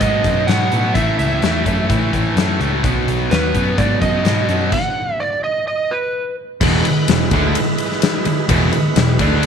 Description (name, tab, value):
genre	blues rock power trio and southern rock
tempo	127 BPM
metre	4/4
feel	straight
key	E major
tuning	A4 = 440 Hz
part	overdriven slide guitar	melody	0.0-6.3 s	B4 to F#5	-20 LUFS	right 3 dB	none
part	overdriven tonewheel organ	sustained chords	0.0-9.5 s	F#3 to C#5	-26 LUFS	right 9 dB	slow rotary speaker
part	thick fuzz guitar	riff	0.0-9.4 s	E2 to D4	-18 LUFS	equal	distortion
part	vintage muted picked electric bass	bass	0.0-9.4 s	E1 to A2	-20 LUFS	right 1 dB	none
part	huge arena drum kit	drums	0.0-9.5 s	crash cymbal, hi-hat, kick drum, ride cymbal, snare drum	-20 LUFS	left 5 dB	none
room	moderate echo chamber reverb, RT60 1.4 s, small room ambience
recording	1960s-style stereo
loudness	-14 LUFS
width	side -7 dB against mid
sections	0.0-6.6 A section; 6.6-9.5 B section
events	stop 4.7-6.6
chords	0.0 B; 1.0 A; 2.8 B; 6.6 E